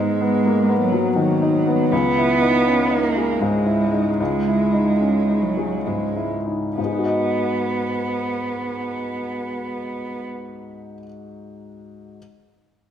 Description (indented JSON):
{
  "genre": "neoclassical piano and strings",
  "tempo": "64-83 BPM",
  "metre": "3/4",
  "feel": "rubato",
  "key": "G# minor",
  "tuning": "A4 = 440 Hz",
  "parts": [
    { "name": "dark cello", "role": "second line", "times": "0.0-10.2 s", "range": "F#3 to B3", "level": "-21 LUFS", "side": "right 3 dB", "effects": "none" },
    { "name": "clear upright piano", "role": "accompaniment", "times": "0.0-12.2 s", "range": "C#2 to D#5", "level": "-22 LUFS", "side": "left 2 dB", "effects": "none" }
  ],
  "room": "wet scoring stage reverb, RT60 1.6 s",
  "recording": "none",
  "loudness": "-18 LUFS",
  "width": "side -9 dB against mid",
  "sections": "0.0-6.8 A section; 6.8-9.5 B section",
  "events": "slowing down 0.8-6.8",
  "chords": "0.0 G#m7; 1.9 C#madd9; 6.8 G#m7"
}